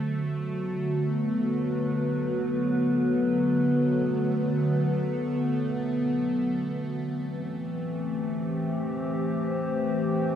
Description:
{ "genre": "ambient", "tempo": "free time", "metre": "none", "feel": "none", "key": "unclear", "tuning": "A4 = 439 Hz", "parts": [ { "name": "warbly tape-like pad", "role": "sustained chords", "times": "0.0-10.4 s", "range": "D3 to C5", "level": "-25 LUFS", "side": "equal", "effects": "chorus, built-in reverb" }, { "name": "bowed-like drone", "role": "drone", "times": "0.0-10.4 s", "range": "A3", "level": "-34 LUFS", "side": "equal", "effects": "built-in reverb, phaser" } ], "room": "wet cathedral reverb, RT60 6.3 s", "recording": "in a vast, echoing space", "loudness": "-25 LUFS", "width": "side -9 dB against mid", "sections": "0.0-10.4 A section", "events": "none", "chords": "0.0 Bm; 6.5 Am7" }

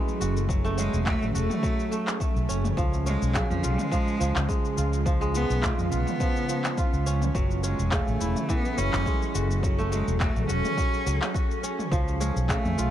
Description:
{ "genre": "organic downtempo", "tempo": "105 BPM", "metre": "4/4", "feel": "swing 54% on 16ths", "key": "F# minor", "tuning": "A4 = 440 Hz", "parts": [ { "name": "clear cello", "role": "melody", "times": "0.0-12.9 s", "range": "E#3 to C#4", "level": "-32 LUFS", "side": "right 1 dB", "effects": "tape echo" }, { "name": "ethereal airy pad", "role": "sustained chords", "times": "0.0-12.9 s", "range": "C#3 to A4", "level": "-34 LUFS", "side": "right 2 dB", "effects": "ensemble chorus, built-in reverb, sidechain pumping" }, { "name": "kora", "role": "arpeggios", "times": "0.0-12.9 s", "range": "C#3 to F#4", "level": "-31 LUFS", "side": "right 1 dB", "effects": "tape echo" }, { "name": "organic electronic drum kit", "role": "drums", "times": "0.1-12.9 s", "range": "cabasa, handclaps, toms", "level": "-33 LUFS", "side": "left 1 dB", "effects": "none" }, { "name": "fretless electric bass", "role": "bass", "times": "0.2-12.9 s", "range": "E1 to E#2", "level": "-27 LUFS", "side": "equal", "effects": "analog chorus, sidechain pumping" }, { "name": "electronic kick drum", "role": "drums", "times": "0.5-12.6 s", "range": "none", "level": "-28 LUFS", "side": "equal", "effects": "none" } ], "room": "little or no reverb", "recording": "none", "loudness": "-23 LUFS", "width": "side -11 dB against mid", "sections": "0.0-12.9 A section", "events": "none", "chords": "0.0 F#m7; 2.8 C#7; 7.3 F#m7; 11.9 C#7" }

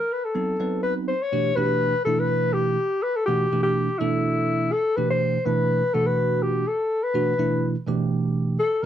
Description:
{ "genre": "jazz", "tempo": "124 BPM", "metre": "4/4", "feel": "swing 55% on 16ths", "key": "E minor", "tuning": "A4 = 440 Hz", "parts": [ { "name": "breathy alto saxophone", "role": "melody", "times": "0.0-8.9 s", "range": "E4 to C#5", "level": "-23 LUFS", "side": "left 2 dB", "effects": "none" }, { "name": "bell-like tine electric piano", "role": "accompaniment", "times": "0.3-8.9 s", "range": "B2 to B4", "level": "-24 LUFS", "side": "right 3 dB", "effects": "phaser" } ], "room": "light reverb", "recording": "dry, close 1970s-style studio recording", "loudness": "-21 LUFS", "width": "side -10 dB against mid", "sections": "0.0-1.3 A section; 1.3-8.9 B section", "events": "none", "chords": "0.4 B7b9; 1.3 Em11" }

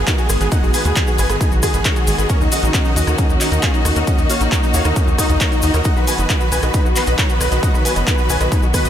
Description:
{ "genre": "uplifting trance", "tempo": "135 BPM", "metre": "4/4", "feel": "straight", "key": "Eb minor", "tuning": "A4 = 440 Hz", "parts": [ { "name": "dense compressed supersaw", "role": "melody", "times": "0.0-8.9 s", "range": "Eb4 to Ab5", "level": "-22 LUFS", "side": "equal", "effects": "sidechain pumping, analog delay" }, { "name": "muted studio string section", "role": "sustained chords", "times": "0.0-8.9 s", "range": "Eb3 to Gb4", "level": "-24 LUFS", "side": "left 1 dB", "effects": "sidechain pumping" }, { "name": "tight sequencer bass", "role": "bass", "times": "0.0-8.9 s", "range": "F#1 to Eb2", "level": "-19 LUFS", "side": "equal", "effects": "sidechain pumping" }, { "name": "downlifter", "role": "sound effects", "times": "0.0-2.3 s", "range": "none", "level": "barely audible", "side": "none", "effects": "none" }, { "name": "wide unison pluck", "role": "arpeggios", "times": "0.1-8.9 s", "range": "Db4 to Eb5", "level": "-26 LUFS", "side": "left 2 dB", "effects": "sidechain pumping, ping-pong delay" }, { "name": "electronic kick drum", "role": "drums", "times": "0.1-8.8 s", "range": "none", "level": "-17 LUFS", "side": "equal", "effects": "none" }, { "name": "punchy analog drum machine", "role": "drums", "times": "0.1-8.9 s", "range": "handclaps, hi-hat, rim click", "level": "-23 LUFS", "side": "equal", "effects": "sidechain pumping on hats, sidechain pumping on cymbals" }, { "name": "cabasa", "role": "percussion", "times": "0.1-8.9 s", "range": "none", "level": "-27 LUFS", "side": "left 3 dB", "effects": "none" } ], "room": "moderate huge ambient reverb, RT60 7.4 s", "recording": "dreamy mix soaked in reverb", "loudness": "-14 LUFS", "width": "side -10 dB against mid", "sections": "0.0-8.9 A section", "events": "none", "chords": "0.0 Abm7; 2.3 Ebm7; 5.9 B" }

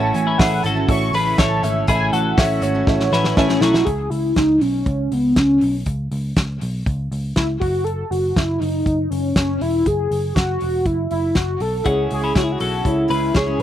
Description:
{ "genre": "jangly indie pop", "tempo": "120 BPM", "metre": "4/4", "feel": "straight", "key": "unclear", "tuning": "A4 = 440 Hz", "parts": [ { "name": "warm velvety synth lead", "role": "melody", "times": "0.0-13.6 s", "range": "B3 to C#6", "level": "-20 LUFS", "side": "equal", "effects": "chorus" }, { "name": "picked steel-string acoustic guitar", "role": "accompaniment", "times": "0.0-4.4, 11.8-13.6 s", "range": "A2 to A4", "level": "-27 LUFS", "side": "right 6 dB", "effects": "none" }, { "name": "warm upright piano", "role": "accompaniment", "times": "0.0-3.9, 11.8-13.6 s", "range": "E4 to F#5", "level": "-26 LUFS", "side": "right 5 dB", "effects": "slapback echo" }, { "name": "soft string machine", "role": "sustained chords", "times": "0.0-3.8 s", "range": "C#3 to E4", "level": "-33 LUFS", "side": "equal", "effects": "none" }, { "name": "twelve-string electric guitar", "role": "arpeggios", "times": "0.0-3.9, 11.9-13.6 s", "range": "C#4 to C#5", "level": "-23 LUFS", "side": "left 5 dB", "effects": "none" }, { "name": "vintage muted picked electric bass", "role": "bass", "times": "0.0-13.6 s", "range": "E1 to C#2", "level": "-23 LUFS", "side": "equal", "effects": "none" }, { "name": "loose indie drum kit", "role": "drums", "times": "0.1-13.6 s", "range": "hi-hat, kick drum, snare drum", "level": "-20 LUFS", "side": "equal", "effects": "none" }, { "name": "vibraphone with soft mallets", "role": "second line", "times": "3.1-3.8 s", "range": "A4 to B4", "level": "-30 LUFS", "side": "left 4 dB", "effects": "slapback echo" } ], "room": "little or no reverb", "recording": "recorded outdoors, with no room sound", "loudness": "-16 LUFS", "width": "side -11 dB against mid", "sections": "0.0-3.9 A section; 3.9-13.6 B section", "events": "drum fill 2.9-3.9", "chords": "0.0 Eadd9; 3.9 Bsus2; 7.6 Esus2; 11.9 C#m" }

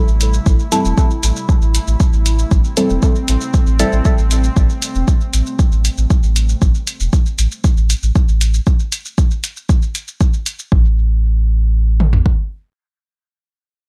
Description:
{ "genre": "dub techno", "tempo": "117 BPM", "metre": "4/4", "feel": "straight", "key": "A minor", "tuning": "A4 = 439 Hz", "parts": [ { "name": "airy breathy pad", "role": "sustained chords", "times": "0.0-6.6 s", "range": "C3 to E4", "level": "-28 LUFS", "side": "equal", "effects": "chorus, sidechain pumping" }, { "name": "soft dub sub bass", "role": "bass", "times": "0.1-12.2 s", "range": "E1 to A1", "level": "-17 LUFS", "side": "equal", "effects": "sidechain pumping" }, { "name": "electronic shaker and hi-hat", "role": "drums", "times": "0.1-10.7 s", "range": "none", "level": "-26 LUFS", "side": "equal", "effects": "none" }, { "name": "deep house drum kit", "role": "drums", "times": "0.5-12.4 s", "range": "kick drum, toms", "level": "-16 LUFS", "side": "equal", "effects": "none" }, { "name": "deep mellow chord stab", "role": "stabs", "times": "0.7-3.9 s", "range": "G3 to A4", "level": "-22 LUFS", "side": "equal", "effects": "chorus, phaser, sidechain pumping, dub echo" } ], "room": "little or no reverb", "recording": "none", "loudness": "-15 LUFS", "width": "mono", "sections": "0.0-10.7 A section; 10.7-13.9 B section", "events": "none", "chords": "0.0 Am7; 10.7 N.C." }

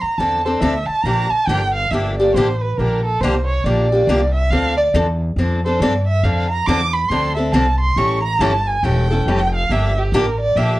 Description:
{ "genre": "acoustic string swing (jazz manouche)", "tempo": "139 BPM", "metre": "4/4", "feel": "swing 62% on 8ths", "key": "D minor", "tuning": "A4 = 439 Hz", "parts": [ { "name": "warm violin", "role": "second line", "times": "0.0-10.8 s", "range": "G4 to D6", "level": "-20 LUFS", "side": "right 2 dB", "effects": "none" }, { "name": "upright bass", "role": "bass", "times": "0.0-10.8 s", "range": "E1 to G2", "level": "-19 LUFS", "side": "equal", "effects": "none" }, { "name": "picked steel-string acoustic guitar", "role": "accompaniment", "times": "0.2-10.8 s", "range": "D3 to A4", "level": "-19 LUFS", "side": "left 1 dB", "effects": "none" } ], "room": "light reverb", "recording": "worn, warbling old tape, cassette tape, warbly pitch drift", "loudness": "-15 LUFS", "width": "side -17 dB against mid", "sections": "0.0-10.8 A section", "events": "violin solo 0.0-10.8", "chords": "0.0 Dm7; 1.1 Gm7; 4.5 Dm7; 8.0 A7; 9.7 Gm7" }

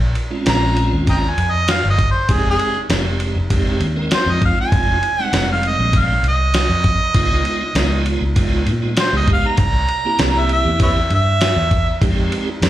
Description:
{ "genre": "straight-eighth soul blues", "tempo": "99 BPM", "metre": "4/4", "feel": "straight", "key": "F minor", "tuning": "A4 = 441 Hz", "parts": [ { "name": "vintage muted fingered electric bass", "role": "bass", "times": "0.0-12.7 s", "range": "F1 to Bb2", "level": "-19 LUFS", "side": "equal", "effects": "none" }, { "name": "dusty soul sampler-style drum kit", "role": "drums", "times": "0.2-12.7 s", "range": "kick drum, ride cymbal, snare drum", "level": "-20 LUFS", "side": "equal", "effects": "none" }, { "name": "tonewheel organ", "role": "accompaniment", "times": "0.3-12.7 s", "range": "G3 to Bb4", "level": "-23 LUFS", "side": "right 2 dB", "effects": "slow rotary speaker, overdrive, chorus vibrato, slapback echo" }, { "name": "warm harmonica", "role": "melody", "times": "0.5-12.0 s", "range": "Ab4 to Bb5", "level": "-19 LUFS", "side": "right 1 dB", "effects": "overdrive, slapback echo" } ], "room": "light reverb", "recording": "live gig heard through the venue's PA, club reverb", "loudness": "-14 LUFS", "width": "side -13 dB against mid", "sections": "0.0-12.7 A section", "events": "harmonica solo 0.0-12.7", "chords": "0.0 Bbm7; 2.3 Fm7; 7.2 Db7; 9.6 C7; 12.0 Fm7" }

